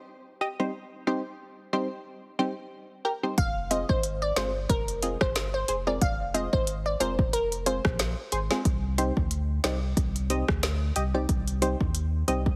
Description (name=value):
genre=dancehall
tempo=91 BPM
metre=4/4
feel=swing 56% on 16ths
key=C minor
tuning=A4 = 440 Hz
part: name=punchy chord stab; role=accompaniment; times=0.4-12.4 s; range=G3 to Eb5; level=-32 LUFS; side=equal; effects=chorus, sidechain pumping
part: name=glassy wavetable pluck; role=melody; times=3.4-7.8 s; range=Bb4 to F5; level=-32 LUFS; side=equal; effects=chorus, tape echo
part: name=warm sub bass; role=bass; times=3.4-12.6 s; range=F1 to Eb2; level=-33 LUFS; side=equal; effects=none
part: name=afro-pop drum kit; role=drums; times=3.4-12.6 s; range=hi-hat, kick drum, rim click, snare drum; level=-30 LUFS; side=equal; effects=none
room=light reverb, digital ambience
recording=heavily compressed radio sound, multiband compression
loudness=-28 LUFS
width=mono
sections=0.0-12.6 A section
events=none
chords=0.0 Cm; 3.4 Fm; 8.7 Cm